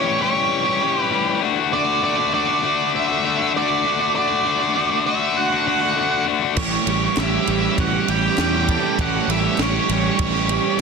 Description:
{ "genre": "indie rock", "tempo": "99 BPM", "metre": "4/4", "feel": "straight", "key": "A mixolydian", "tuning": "A4 = 441 Hz", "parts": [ { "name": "octave-fuzz lead guitar", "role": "melody", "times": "0.0-10.8 s", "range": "C#5 to G5", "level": "-22 LUFS", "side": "right 6 dB", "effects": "distortion, tape echo" }, { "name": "overdriven electric guitar", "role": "riff", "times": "0.0-10.8 s", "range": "A2 to G4", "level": "-20 LUFS", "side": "left 9 dB", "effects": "none" }, { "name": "bright trumpet", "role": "second line", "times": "5.4-10.8 s", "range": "C#4 to G4", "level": "-31 LUFS", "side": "right 11 dB", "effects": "none" }, { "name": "crunchy overdriven guitar", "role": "riff", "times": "6.6-10.8 s", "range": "A2 to A4", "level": "-23 LUFS", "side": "right 15 dB", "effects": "analog chorus" }, { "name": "fuzz fingered electric bass", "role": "bass", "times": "6.6-10.6 s", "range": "A1 to E2", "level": "-24 LUFS", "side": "right 1 dB", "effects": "overdrive" }, { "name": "compact cocktail drum kit", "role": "drums", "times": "6.6-10.6 s", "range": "crash cymbal, kick drum, ride cymbal, snare drum", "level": "-24 LUFS", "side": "right 2 dB", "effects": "none" }, { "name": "group handclap", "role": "percussion", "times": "7.2-9.7 s", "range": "none", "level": "-37 LUFS", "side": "equal", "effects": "none" } ], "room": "light reverb, small room ambience", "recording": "dense, heavily limited modern master", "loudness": "-17 LUFS", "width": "side -5 dB against mid", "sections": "0.0-10.8 A section", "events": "none", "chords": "0.0 A7; 1.4 D; 6.6 A7" }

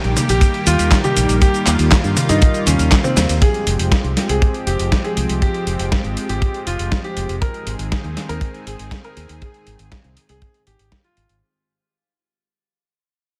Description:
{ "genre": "italo disco", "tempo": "120 BPM", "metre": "4/4", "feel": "straight", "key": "F minor", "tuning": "A4 = 440 Hz", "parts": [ { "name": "lush unison pad", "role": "sustained chords", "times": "0.0-11.4 s", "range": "Eb3 to Ab4", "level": "-26 LUFS", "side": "equal", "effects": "chorus" }, { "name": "fingered electric bass with an envelope filter", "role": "bass", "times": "0.0-11.4 s", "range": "F1 to G2", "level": "-22 LUFS", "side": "equal", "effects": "none" }, { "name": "dusty soul sampler-style drum kit", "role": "drums", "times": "0.0-11.4 s", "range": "cabasa, handclaps, hi-hat, snare drum, toms", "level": "-23 LUFS", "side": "equal", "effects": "overdrive" }, { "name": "clear baby grand piano", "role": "melody", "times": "0.3-11.3 s", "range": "C4 to Bb4", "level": "-26 LUFS", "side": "equal", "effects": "tape echo" }, { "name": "kick drum", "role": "drums", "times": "0.4-11.0 s", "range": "none", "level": "-18 LUFS", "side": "equal", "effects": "none" } ], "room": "small room ambience", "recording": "none", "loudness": "-17 LUFS", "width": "mono", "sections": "0.0-3.4 A section; 3.4-11.4 B section", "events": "drum fill 3.2; band accent 3.2; fade-out 3.4-11.4", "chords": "0.0 Eb; 3.4 Fmadd9; 7.4 Ab" }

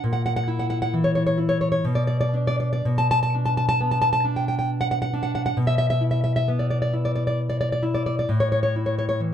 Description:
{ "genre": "romantic piece for solo classical guitar", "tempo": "66 BPM", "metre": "3/4", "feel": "rubato", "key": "unclear", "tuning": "A4 = 438 Hz", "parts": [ { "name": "nylon-string guitar", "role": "solo", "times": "0.0-9.3 s", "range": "A2 to A5", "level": "-20 LUFS", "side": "equal", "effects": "none" } ], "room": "light reverb", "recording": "none", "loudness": "-20 LUFS", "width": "side -9 dB against mid", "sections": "0.0-9.3 A section", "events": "none", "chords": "0.0 A#dim; 1.9 Bm; 5.6 E5/B; 8.3 A5" }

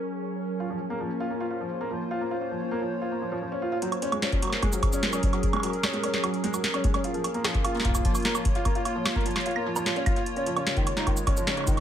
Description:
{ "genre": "IDM", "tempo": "149 BPM", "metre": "4/4", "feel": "straight", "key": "Gb lydian", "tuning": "A4 = 440 Hz", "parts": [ { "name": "hollow soft pad", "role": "sustained chords", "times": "0.0-11.8 s", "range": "Db3 to Db5", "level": "-31 LUFS", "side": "equal", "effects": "chorus" }, { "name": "bubbling stepped-filter texture", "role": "texture", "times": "0.0-3.8, 11.0-11.8 s", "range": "Db4 to Db5", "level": "-40 LUFS", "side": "left 1 dB", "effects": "chorus, built-in reverb" }, { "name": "felt-muted upright piano", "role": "arpeggios", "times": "0.6-11.7 s", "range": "Eb3 to F4", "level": "-31 LUFS", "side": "equal", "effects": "ping-pong delay" }, { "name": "booming analog drum machine", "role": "drums", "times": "3.8-11.8 s", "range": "hi-hat, shaker, snare drum, woodblock", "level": "-29 LUFS", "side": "right 2 dB", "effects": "none" }, { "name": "electronic kick drum", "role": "drums", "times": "4.3-11.8 s", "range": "none", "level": "-26 LUFS", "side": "equal", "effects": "none" } ], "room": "light reverb", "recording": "none", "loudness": "-24 LUFS", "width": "side -10 dB against mid", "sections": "0.0-3.8 A section; 3.8-11.8 B section", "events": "filter sweep on analog synth pad 0.0-3.8", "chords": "0.0 Gbadd9; 0.6 Bbm; 3.8 Gbadd9; 7.0 Bbm; 10.3 Dbadd9" }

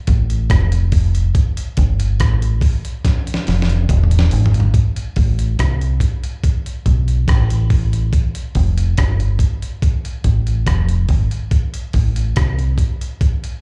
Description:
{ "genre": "roots reggae", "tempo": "71 BPM", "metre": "4/4", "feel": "straight", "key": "A minor", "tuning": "A4 = 440 Hz", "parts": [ { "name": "deep dub fingered electric bass", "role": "bass", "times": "0.1-12.8 s", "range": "E1 to C2", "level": "-18 LUFS", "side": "equal", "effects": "none" }, { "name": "dusty soul sampler-style drum kit", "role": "drums", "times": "0.1-13.6 s", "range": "hi-hat, kick drum, rim click, snare drum, toms", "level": "-19 LUFS", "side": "equal", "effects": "none" } ], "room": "little or no reverb", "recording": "live gig heard through the venue's PA, club reverb", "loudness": "-17 LUFS", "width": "mono", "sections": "0.0-4.7 A section; 4.7-13.6 B section", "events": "drum fill 3.0-4.7", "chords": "none" }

